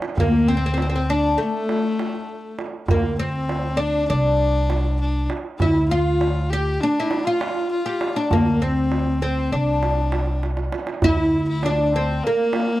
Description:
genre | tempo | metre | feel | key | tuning
Turkish makam ensemble | 199 BPM (eighths) | 9/8 | straight | D makam ussak | A4 = 440 Hz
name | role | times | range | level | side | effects
darbuka | percussion | 0.0-12.7 s | none | -26 LUFS | right 3 dB | none
oud | melody | 0.2-12.8 s | A3 to G4 | -22 LUFS | left 1 dB | none
clear kamancheh | second line | 0.2-12.8 s | A3 to G4 | -28 LUFS | left 2 dB | none
upright bass | bass | 0.2-12.2 s | C2 to D2 | -23 LUFS | equal | none
room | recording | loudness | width
little or no reverb | dry, close 1970s-style studio recording | -18 LUFS | side -15 dB against mid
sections
0.0-11.0 A section; 11.0-12.8 B section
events
drum fill 0.0, 10.4-11.0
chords
none

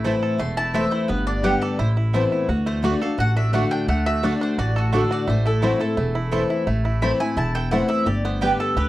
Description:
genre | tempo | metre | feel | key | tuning
bluegrass | 172 BPM | 4/4 | straight | unclear | A4 = 440 Hz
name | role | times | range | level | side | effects
bluegrass banjo | melody | 0.0-8.9 s | A3 to A4 | -30 LUFS | right 4 dB | none
picked steel-string acoustic guitar | accompaniment | 0.0-8.9 s | E2 to G4 | -23 LUFS | left 2 dB | none
mandolin | stabs | 0.0-8.5 s | A3 to A5 | -26 LUFS | right 6 dB | none
upright bass | bass | 0.0-8.9 s | E1 to D2 | -23 LUFS | equal | none
mandolin | melody | 0.4-8.9 s | F#4 to C6 | -27 LUFS | equal | none
room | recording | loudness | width
little or no reverb | dry, close 1970s-style studio recording | -19 LUFS | side -16 dB against mid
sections
0.0-2.5 A section; 2.5-8.9 B section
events
none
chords
0.0 Am; 1.1 G; 1.8 Amadd9; 2.5 D; 5.3 Am; 8.1 G

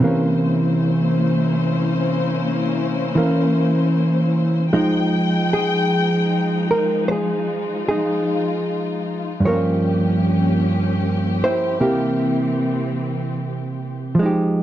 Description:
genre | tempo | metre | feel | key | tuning
jazz ballad | 51 BPM | 4/4 | swing 68% on 8ths | unclear | A4 = 439 Hz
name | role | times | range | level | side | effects
hollow-body jazz guitar | accompaniment | 0.0-14.6 s | G2 to Db5 | -18 LUFS | right 1 dB | none
dark studio string section | sustained chords | 0.0-14.2 s | E3 to G5 | -23 LUFS | left 4 dB | none
room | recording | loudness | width
moderate club reverb, RT60 0.5 s | dark, warm production | -17 LUFS | side -12 dB against mid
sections
0.0-14.2 A section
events
none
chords
0.0 C7b9; 4.7 Fm9; 9.4 Gm7b5; 11.8 C7

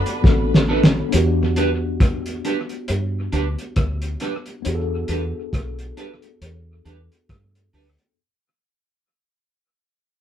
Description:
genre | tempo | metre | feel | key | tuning
lovers rock reggae | 68 BPM | 4/4 | swing 58% on 16ths | E minor | A4 = 440 Hz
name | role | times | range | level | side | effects
rich studio violin section | second line | 0.0-1.1 s | B4 to B5 | -33 LUFS | right 5 dB | none
warm horn section | second line | 0.0-0.6 s | D3 to D4 | -33 LUFS | equal | none
mellow tine electric piano | accompaniment | 0.0-8.2 s | B3 to A4 | -26 LUFS | left 3 dB | medium stereo tremolo
deep dub fingered electric bass | bass | 0.0-8.0 s | A1 to G2 | -24 LUFS | equal | none
cloth-damped thuddy drum kit | drums | 0.1-8.2 s | hi-hat, kick drum, rim click, snare drum | -18 LUFS | equal | dub echo
electric guitar at the edge of break-up | stabs | 0.7-7.8 s | D4 to B4 | -24 LUFS | right 5 dB | none
room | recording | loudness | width
light reverb | band playing live in one room | -18 LUFS | side -10 dB against mid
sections
0.0-1.1 A section; 1.1-8.2 B section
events
drum fill 0.2-1.1; fade-out 1.1-8.2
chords
0.0 Bm7; 1.1 Em7

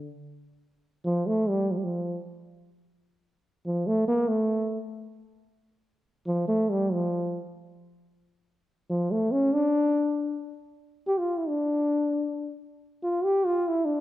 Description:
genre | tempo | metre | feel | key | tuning
persian | 92 BPM (dotted quarters) | 6/8 | straight | D avaz esfahan | A4 = 440 Hz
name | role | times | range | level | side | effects
trombone with bucket mute | solo | 0.0-14.0 s | D3 to G4 | -25 LUFS | equal | none
room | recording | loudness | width
moderate recital hall reverb, RT60 1.5 s | none | -24 LUFS | side -15 dB against mid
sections
0.4-10.8 A section; 10.8-14.0 B section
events
none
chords
none

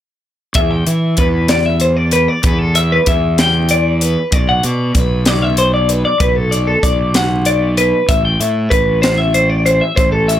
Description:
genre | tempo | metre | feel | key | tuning
math rock and midwest emo | 64 BPM (dotted quarters) | 6/8 | straight | E minor | A4 = 440 Hz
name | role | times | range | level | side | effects
crisp fusion drum kit | drums | 0.5-10.4 s | hi-hat, kick drum, snare drum | -17 LUFS | equal | none
twelve-string electric guitar | arpeggios | 0.6-10.4 s | A4 to G5 | -15 LUFS | left 2 dB | none
fuzz fingered electric bass | bass | 0.6-10.4 s | A1 to E3 | -16 LUFS | equal | overdrive
room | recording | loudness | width
little or no reverb | none | -11 LUFS | side -11 dB against mid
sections
0.6-10.4 A section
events
none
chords
0.6 Em7; 4.3 Bm; 8.1 Am

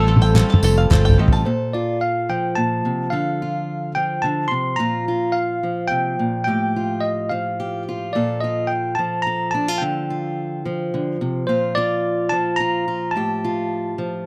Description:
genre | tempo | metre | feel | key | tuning
indie folk with a building arrangement | 108 BPM | 3/4 | straight | Bb major | A4 = 439 Hz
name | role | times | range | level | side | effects
bell-like tine electric piano | melody | 0.0-14.3 s | A4 to C6 | -25 LUFS | equal | none
bright grand piano | accompaniment | 0.0-1.5 s | A1 to Eb5 | -31 LUFS | equal | none
picked twelve-string acoustic guitar | accompaniment | 0.0-1.5 s | A2 to A4 | -28 LUFS | equal | none
bluegrass banjo | arpeggios | 0.0-1.5 s | A4 to A5 | -29 LUFS | equal | slapback echo
fingered electric bass | bass | 0.0-1.4 s | F1 to A1 | -19 LUFS | equal | none
group handclap | percussion | 0.1-1.0 s | none | -33 LUFS | equal | none
toms | drums | 0.2-1.4 s | none | -18 LUFS | equal | none
tambourine | percussion | 0.2-1.4 s | none | -36 LUFS | equal | none
fingerpicked acoustic archtop guitar | accompaniment | 1.4-14.3 s | A2 to A4 | -26 LUFS | equal | none
room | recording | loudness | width
light reverb | dry, close 1970s-style studio recording | -21 LUFS | mono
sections
0.0-1.5 A section; 1.5-14.3 B section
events
drum fill 0.0-1.5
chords
0.0 Fadd9/A; 1.5 Bb5; 3.1 Dm7; 4.8 Bb5; 6.5 Fadd9/A; 8.2 Bbmaj7(no3); 9.8 Dm7; 11.5 Bb; 13.2 Fadd9/A

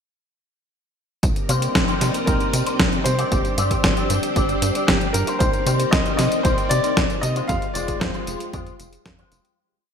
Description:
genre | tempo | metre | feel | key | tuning
italo disco | 115 BPM | 4/4 | straight | C minor | A4 = 438 Hz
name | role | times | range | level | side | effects
string machine, full ensemble | sustained chords | 1.2-9.6 s | Ab3 to Eb5 | -26 LUFS | equal | ensemble chorus
tight sequencer bass | bass | 1.2-9.4 s | F1 to C3 | -24 LUFS | equal | none
clean 12-bit digital drum machine | drums | 1.2-9.6 s | hi-hat, snare drum, tambourine | -24 LUFS | equal | gated reverb
electronic kick drum | drums | 1.2-9.2 s | none | -24 LUFS | equal | none
electric guitar with an envelope filter | stabs | 1.5-9.6 s | Ab3 to D5 | -27 LUFS | left 2 dB | ensemble chorus
bright grand piano | melody | 2.3-8.7 s | G4 to F5 | -26 LUFS | left 2 dB | ping-pong delay
room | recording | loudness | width
moderate lush hall reverb, RT60 1.9 s | bright 1980s-style digital production | -18 LUFS | side -7 dB against mid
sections
1.2-9.6 verse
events
fade-out 6.8-9.6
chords
1.2 Cm7; 3.3 Gsus4; 5.4 Cm7; 7.5 Fmadd9

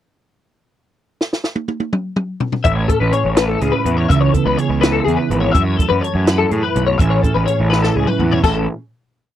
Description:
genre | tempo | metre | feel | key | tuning
math rock and midwest emo | 83 BPM (dotted quarters) | 6/8 | straight | A major | A4 = 441 Hz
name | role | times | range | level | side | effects
compact cocktail drum kit | drums | 1.2-8.5 s | crash cymbal, hi-hat, kick drum, snare drum, toms | -18 LUFS | equal | none
mellow electric guitar | accompaniment | 2.6-8.7 s | F#2 to A4 | -19 LUFS | right 5 dB | lush chorus
twelve-string electric guitar | arpeggios | 2.6-8.7 s | G#4 to E5 | -19 LUFS | left 7 dB | ensemble chorus
fuzz picked electric bass | bass | 2.7-8.7 s | G#1 to A2 | -18 LUFS | equal | overdrive
room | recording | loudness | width
little or no reverb | dry, close 1970s-style studio recording | -14 LUFS | side -11 dB against mid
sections
1.2-2.6 pickup bar; 2.6-8.4 A section; 8.4-9.4 final chord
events
drum fill 1.2-2.6, 7.7-8.4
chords
1.2 N.C.; 2.6 Amaj7; 4.1 C#m7; 5.5 F#m7; 7.0 Amaj7

